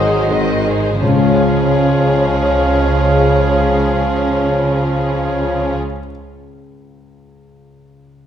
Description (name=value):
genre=classical, romantic movement for piano and orchestra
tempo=44 BPM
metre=4/4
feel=rubato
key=unclear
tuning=A4 = 440 Hz
part: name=clear grand piano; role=melody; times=0.0-8.3 s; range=C#2 to E#5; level=-21 LUFS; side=left 5 dB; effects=none
part: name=rich studio violin section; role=melody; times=0.0-5.8 s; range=G#4 to B#4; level=-26 LUFS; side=left 3 dB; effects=none
part: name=clear clarinet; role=second line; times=0.0-5.8 s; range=C#5 to D#5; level=-24 LUFS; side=left 1 dB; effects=none
part: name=mellow hollow concert flute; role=second line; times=0.0-5.8 s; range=C#5 to D#5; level=-22 LUFS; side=left 2 dB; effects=none
part: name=rich studio violin section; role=second line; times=0.0-5.8 s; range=E#4 to D#5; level=-28 LUFS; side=left 2 dB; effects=none
part: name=rich studio viola section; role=accompaniment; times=0.0-5.7 s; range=B#3 to G#4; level=-24 LUFS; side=right 3 dB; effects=none
part: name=warm bassoon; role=accompaniment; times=0.0-5.8 s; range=E#3 to F#3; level=-22 LUFS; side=right 2 dB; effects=none
part: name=warm French horn section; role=sustained chords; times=0.0-5.8 s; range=C#4 to G#4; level=-25 LUFS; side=left 5 dB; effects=none
part: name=warm trombone section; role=sustained chords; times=0.0-5.8 s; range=C#3 to G#3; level=-27 LUFS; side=right 5 dB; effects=none
part: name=clear trumpet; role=stabs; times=0.0-5.8 s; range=D#5 to E#5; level=-24 LUFS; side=right 1 dB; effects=none
part: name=clear studio double bass section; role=bass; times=0.0-5.8 s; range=G#1 to C#2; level=-21 LUFS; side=right 3 dB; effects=none
part: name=warm studio cello section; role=bass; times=0.0-5.8 s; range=C#3 to D#3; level=-21 LUFS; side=right 2 dB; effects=none
part: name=timpani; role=percussion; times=1.0-5.8 s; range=none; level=barely audible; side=none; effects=none
room=moderate scoring stage reverb, RT60 1.6 s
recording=dark, warm production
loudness=-12 LUFS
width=side -9 dB against mid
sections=0.0-1.0 A section; 1.0-6.5 B section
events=slowing down 0.0-1.0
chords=0.0 G#7; 1.0 C#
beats=| 1.01 2.37 3.75 5.12